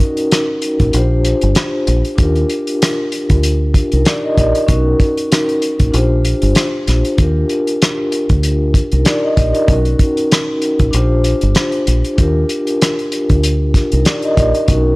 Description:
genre	hip hop, boom-bap hip-hop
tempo	96 BPM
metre	4/4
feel	swing 56% on 16ths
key	Eb major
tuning	A4 = 440 Hz
part	vibraphone with soft mallets	accompaniment	0.0-15.0 s	Db4 to Eb5	-16 LUFS	equal	high-pass filter, low-pass filter
part	warm soul drum kit	drums	0.0-14.8 s	hi-hat, kick drum, rim click, snare drum	-15 LUFS	equal	none
part	deep dub fingered electric bass	bass	0.8-14.9 s	G1 to Eb2	-15 LUFS	equal	transformer saturation
room	studio ambience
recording	dry, gritty hardware recording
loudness	-12 LUFS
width	side -23 dB against mid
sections	0.0-15.0 A section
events	none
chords	0.0 Bmaj7 (rootless); 0.9 Bb6; 2.2 Ebmaj7; 4.7 Bmaj7; 5.9 Bb6; 7.2 Ebmaj7; 9.7 Bmaj7; 10.9 Bb6; 12.2 Ebmaj7

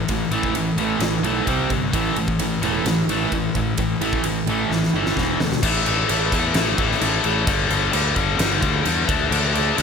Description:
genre	hard rock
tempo	130 BPM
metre	4/4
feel	straight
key	A minor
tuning	A4 = 438 Hz
part	overdriven semi-hollow guitar	riff	0.0-5.6 s	E2 to C4	-25 LUFS	right 16 dB	none
part	scooped high-gain guitar	riff	0.0-9.8 s	E2 to D4	-21 LUFS	left 7 dB	distortion
part	fuzz fingered electric bass	bass	0.0-9.8 s	E1 to E2	-26 LUFS	equal	overdrive
part	big rock drum kit	drums	0.1-9.8 s	crash cymbal, kick drum, ride cymbal, snare drum	-24 LUFS	right 2 dB	none
room	light reverb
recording	none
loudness	-18 LUFS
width	side -6 dB against mid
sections	0.0-5.6 A section; 5.6-9.8 B section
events	drum fill 4.7-5.6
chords	0.0 A5; 1.5 C5; 1.9 A5; 5.2 E5; 5.6 A5; 7.5 G5; 9.1 D5

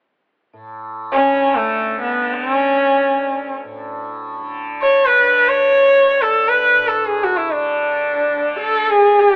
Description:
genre	indian classical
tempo	free time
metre	none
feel	none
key	D raga yaman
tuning	A4 = 440 Hz
part	tanpura	drone	0.5-9.4 s	D2 to D3	-26 LUFS	equal	none
part	rich sarangi	melody	1.1-9.4 s	A3 to C#5	-13 LUFS	equal	none
room	moderate studio ambience, RT60 0.5 s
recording	telephone sound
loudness	-13 LUFS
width	side -36 dB against mid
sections	0.5-9.4 A section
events	none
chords	none

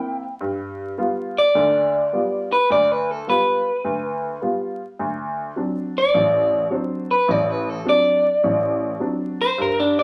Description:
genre	blues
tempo	105 BPM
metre	4/4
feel	swing 64% on 8ths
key	unclear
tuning	A4 = 439 Hz
part	electric guitar through a small old amp	melody	0.0-10.0 s	D4 to G5	-20 LUFS	equal	none
part	warm upright piano	accompaniment	0.0-10.0 s	A1 to F4	-27 LUFS	equal	none
room	moderate studio reverb, RT60 0.7 s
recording	vinyl crackle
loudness	-21 LUFS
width	mono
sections	0.0-10.0 A section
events	clean electric guitar solo 0.0-10.0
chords	0.4 G7; 5.0 D7

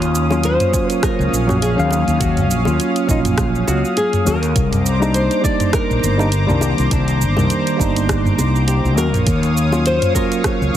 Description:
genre	sunset chillout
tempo	102 BPM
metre	4/4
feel	swing 56% on 16ths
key	unclear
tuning	A4 = 440 Hz
part	flamenco guitar	melody	0.0-10.8 s	D4 to D5	-23 LUFS	left 2 dB	ping-pong delay
part	lush unison pad	sustained chords	0.0-10.8 s	Db4 to Eb6	-24 LUFS	equal	chorus
part	fretless electric bass	bass	0.0-10.8 s	G1 to Eb2	-18 LUFS	equal	lush chorus
part	smooth R&B drum kit	drums	0.0-10.7 s	cabasa, hi-hat, rim click, toms	-22 LUFS	right 1 dB	small room ambience
part	tine electric piano	accompaniment	0.3-10.8 s	Eb3 to F5	-21 LUFS	moving between left 4 dB and right 7 dB	auto-pan, tape echo
part	bongos	percussion	0.3-9.8 s	none	-29 LUFS	left 1 dB	none
part	electronic kick drum	drums	0.7-10.6 s	none	-22 LUFS	equal	overdrive, small room ambience
room	light reverb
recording	heavily compressed radio sound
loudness	-14 LUFS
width	side -11 dB against mid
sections	0.0-10.8 A section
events	none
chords	0.0 Ebm9; 4.6 Cm9; 9.0 Ebm9

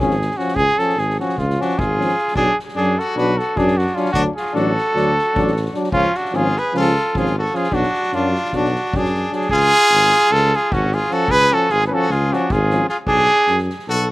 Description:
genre	balkan folk, Balkan brass band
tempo	302 BPM (eighths)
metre	9/8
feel	straight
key	unclear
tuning	A4 = 440 Hz
part	warm cornet	melody	0.0-14.1 s	E#4 to B4	-18 LUFS	right 1 dB	slapback echo
part	brilliant trombone	accompaniment	0.0-12.8 s	C#4 to D4	-25 LUFS	left 5 dB	none
part	warm euphonium	accompaniment	0.0-12.8 s	E#3 to F#3	-26 LUFS	right 3 dB	slapback echo
part	mellow tuba	bass	0.0-14.1 s	G#1 to F#2	-21 LUFS	equal	none
part	soft-mallet drum kit	percussion	0.1-14.1 s	kick drum, snare drum	-29 LUFS	equal	none
part	brilliant trumpet	second line	1.6-14.1 s	C#4 to G#4	-24 LUFS	left 3 dB	none
room	little or no reverb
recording	none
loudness	-15 LUFS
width	side -18 dB against mid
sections	0.0-9.5 A section; 9.5-14.1 B section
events	none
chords	0.0 C#; 2.3 Bm; 4.1 D; 5.9 C#; 7.7 Bm; 9.5 C#; 13.1 Bm

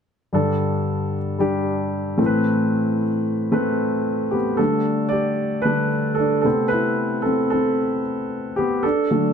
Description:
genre	pop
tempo	113 BPM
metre	4/4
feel	straight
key	unclear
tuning	A4 = 440 Hz
part	warm concert grand piano	accompaniment	0.3-9.3 s	G2 to D5	-19 LUFS	equal	none
room	moderate plate reverb, RT60 2.5 s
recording	dark, warm production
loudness	-19 LUFS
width	side -7 dB against mid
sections	0.3-4.6 A section; 4.6-9.3 B section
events	grand piano solo 4.6-9.3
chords	0.3 Gsus2; 2.2 Amadd9; 4.6 Gsus2; 6.4 Amadd9

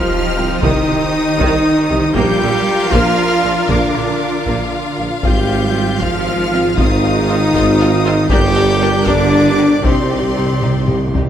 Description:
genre	cinematic, epic orchestral film score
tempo	78 BPM (dotted quarters)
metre	6/8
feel	straight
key	C minor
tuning	A4 = 440 Hz
part	warm symphonic violin section	melody	0.0-11.1 s	C6 to G6	-24 LUFS	left 2 dB	none
part	warm symphonic violin section	second line	0.0-11.2 s	F4 to F5	-26 LUFS	left 2 dB	none
part	rich symphonic viola section	accompaniment	0.0-11.2 s	C3 to G4	-23 LUFS	right 1 dB	none
part	mellow French horn section	sustained chords	0.0-11.2 s	C4 to G4	-21 LUFS	left 4 dB	none
part	warm symphonic string section	sustained chords	0.0-11.3 s	C4 to F5	-23 LUFS	left 2 dB	none
part	mellow trumpet	stabs	0.0-11.2 s	C4 to G4	-21 LUFS	right 1 dB	none
part	rich symphonic cello section	bass	0.0-11.1 s	C3 to G3	-20 LUFS	right 2 dB	none
part	sub drop	sound effects	0.0-0.6 s	none	barely audible	none	none
part	rich symphonic double bass section	bass	0.4-11.3 s	G1 to C2	-21 LUFS	right 3 dB	none
part	warm tuba	bass	0.4-11.3 s	G1 to C2	-22 LUFS	right 2 dB	none
part	taiko ensemble	drums	0.4-11.3 s	none	-20 LUFS	left 1 dB	none
part	timpani	percussion	9.8-11.3 s	C3	-21 LUFS	right 1 dB	none
room	wet scoring stage reverb, RT60 1.6 s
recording	none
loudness	-12 LUFS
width	side -10 dB against mid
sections	0.0-11.3 A section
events	impact 0.0-0.6; timpani fill 9.8-11.3; drum fill 10.6-11.3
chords	0.0 Cm; 2.1 Bb; 5.2 Fm/Ab; 8.3 Gm; 9.8 Cmadd9

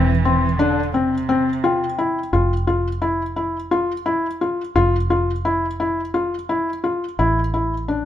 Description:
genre	contemporary instrumental, chamber music in an uneven meter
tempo	173 BPM (eighths)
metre	7/8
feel	straight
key	unclear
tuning	A4 = 440 Hz
part	dark cello	second line	0.0-2.0 s	C3 to E3	-24 LUFS	right 8 dB	none
part	felt-muted upright piano	arpeggios	0.0-8.1 s	C4 to F4	-20 LUFS	left 2 dB	none
part	fingered electric bass	bass	0.0-8.1 s	E1 to A1	-22 LUFS	right 1 dB	none
part	celesta	texture	0.3-2.6 s	G5 to C6	-27 LUFS	left 5 dB	none
room	light reverb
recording	close, detailed microphones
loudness	-18 LUFS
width	side -11 dB against mid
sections	0.0-2.3 A section; 2.3-8.1 B section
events	none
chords	0.0 C/E; 2.3 N.C.; 7.2 A5

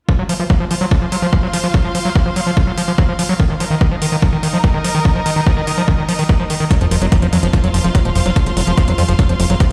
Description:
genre	psychedelic trance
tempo	145 BPM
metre	4/4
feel	straight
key	unclear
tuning	A4 = 440 Hz
part	screaming distorted acid line	riff	0.1-9.6 s	Eb3 to Gb3	-21 LUFS	equal	distortion, chorus, sidechain pumping, digital delay
part	electronic kick drum	drums	0.1-9.7 s	none	-16 LUFS	equal	none
part	rich studio string section	texture	0.1-9.7 s	Eb4 to C6	-26 LUFS	equal	sidechain pumping
part	electronic hi-hat	drums	0.3-9.7 s	none	-28 LUFS	equal	none
part	plucky analog bass	bass	6.8-9.6 s	Eb1 to F2	-18 LUFS	equal	none
room	light reverb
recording	played on a big sound system in a bare room, stone room reverb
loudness	-15 LUFS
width	mono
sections	0.1-9.7 A section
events	none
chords	0.1 F5; 3.4 Eb5; 6.7 F5

